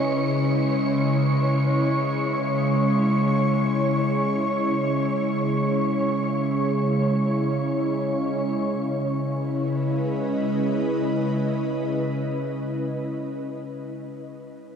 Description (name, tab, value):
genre	ambient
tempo	free time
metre	none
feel	none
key	C# minor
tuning	A4 = 438 Hz
part	ethereal airy pad	sustained chords	0.0-13.1 s	C#3 to D#5	-24 LUFS	equal	ensemble chorus, built-in reverb
part	overtone-sweeping drone	drone	0.0-12.6 s	C#3 to G#3	-27 LUFS	equal	chorus, built-in reverb, phaser
part	wind-like tuned noise texture	texture	0.0-8.7 s	C#5 to C#6	-29 LUFS	equal	built-in reverb
room	wet huge ambient reverb, RT60 7.5 s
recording	dark, warm production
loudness	-21 LUFS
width	side -7 dB against mid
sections	0.0-8.7 A section; 8.7-12.4 B section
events	none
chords	0.0 C#m7